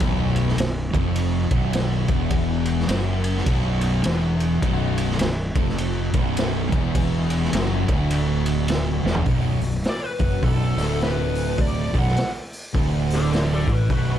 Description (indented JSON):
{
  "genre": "stoner and doom metal",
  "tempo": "104 BPM",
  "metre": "4/4",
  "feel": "swing 61% on 8ths",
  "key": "unclear",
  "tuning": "A4 = 440 Hz",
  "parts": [
    { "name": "crunchy overdriven guitar", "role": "riff", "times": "0.0-14.2 s", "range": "B1 to A2", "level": "-29 LUFS", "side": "equal", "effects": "none" },
    { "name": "thick fuzz guitar", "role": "riff", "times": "0.0-14.2 s", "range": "B1 to A2", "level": "-26 LUFS", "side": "left 6 dB", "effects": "distortion" },
    { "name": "thick fuzz guitar", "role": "riff", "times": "0.0-14.2 s", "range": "B1 to A2", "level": "-27 LUFS", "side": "right 8 dB", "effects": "distortion" },
    { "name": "fuzz fingered electric bass", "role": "bass", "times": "0.0-14.2 s", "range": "B0 to A1", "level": "-26 LUFS", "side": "equal", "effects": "overdrive, tube saturation" },
    { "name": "raw garage drum kit", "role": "drums", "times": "0.0-14.1 s", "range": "hi-hat, kick drum, ride cymbal, snare drum, toms", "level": "-25 LUFS", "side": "equal", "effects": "none" },
    { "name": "fuzz lead guitar", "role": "melody", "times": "9.9-14.2 s", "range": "F#4 to F#5", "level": "-28 LUFS", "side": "left 2 dB", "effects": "wah, distortion, slapback echo" }
  ],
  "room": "light reverb",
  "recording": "dark, warm production",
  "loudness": "-19 LUFS",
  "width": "side -10 dB against mid",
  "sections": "0.0-9.3 A section; 9.3-14.2 B section",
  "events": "drum fill 9.0; lead electric guitar solo 9.3-14.2",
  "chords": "0.0 Bm"
}